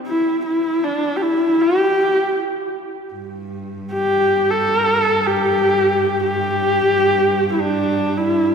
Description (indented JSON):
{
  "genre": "mongolian traditional, Mongolian folk",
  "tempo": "78 BPM",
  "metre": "4/4",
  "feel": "straight",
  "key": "unclear",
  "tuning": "A4 = 440 Hz",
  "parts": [
    { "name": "warm horsehead fiddle", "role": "melody", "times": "0.1-8.5 s", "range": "D4 to A4", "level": "-16 LUFS", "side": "equal", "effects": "none" },
    { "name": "rich cello", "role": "drone", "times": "3.1-8.5 s", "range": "G2", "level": "-25 LUFS", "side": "right 2 dB", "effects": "none" }
  ],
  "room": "wet church reverb, RT60 3.2 s",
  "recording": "recorded in a church or concert hall",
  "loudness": "-15 LUFS",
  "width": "side -6 dB against mid",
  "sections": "0.0-3.2 A section; 3.2-8.5 B section",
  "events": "none",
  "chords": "none"
}